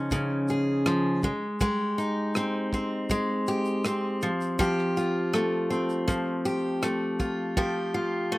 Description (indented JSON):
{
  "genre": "acoustic pop",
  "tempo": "80 BPM",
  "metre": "4/4",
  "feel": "straight",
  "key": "unclear",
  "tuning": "A4 = 440 Hz",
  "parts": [
    { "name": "picked steel-string acoustic guitar", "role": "accompaniment", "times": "0.0-8.4 s", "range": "Db3 to Ab4", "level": "-25 LUFS", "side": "equal", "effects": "none" },
    { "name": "modern studio drum kit", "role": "drums", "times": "0.1-7.7 s", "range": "kick drum, rim click, shaker", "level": "-32 LUFS", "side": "right 1 dB", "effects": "none" }
  ],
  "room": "little or no reverb",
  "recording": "recorded outdoors, with no room sound",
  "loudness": "-25 LUFS",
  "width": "side -19 dB against mid",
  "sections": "0.0-8.4 A section",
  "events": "drum fill 7.6-8.4",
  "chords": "0.0 Dbadd9; 1.2 Abmaj7; 4.2 Fadd9"
}